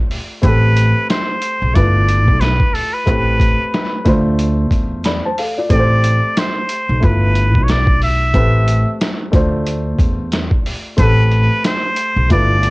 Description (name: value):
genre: hip hop, jazz-hop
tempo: 91 BPM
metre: 4/4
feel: swing 59% on 16ths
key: A minor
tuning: A4 = 440 Hz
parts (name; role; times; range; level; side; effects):
- dark upright piano; accompaniment; 0.0-12.7 s; A3 to B5; -22 LUFS; left 1 dB; cassette tape, plate reverb
- trip hop sampler-style drum kit; drums; 0.1-12.7 s; hi-hat, kick drum, snare drum; -17 LUFS; equal; cassette tape
- trumpet with straight mute; melody; 0.4-12.7 s; A4 to E5; -18 LUFS; equal; cassette tape
- upright bass; bass; 0.4-12.7 s; G1 to E2; -15 LUFS; equal; none
room: little or no reverb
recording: home recording on cassette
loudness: -12 LUFS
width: side -23 dB against mid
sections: 0.0-12.7 A section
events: none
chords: 0.4 Am9; 1.7 G13; 3.1 Am9; 4.1 Dm7; 5.7 Am7; 7.0 G13; 8.3 Am9; 9.3 Dm7; 11.0 Am9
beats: | 0.43 1.09 1.75 2.41 | 3.07 3.73 4.39 5.04 | 5.70 6.36 7.02 7.68 | 8.34 9.00 9.66 10.32 | 10.98 11.64 12.30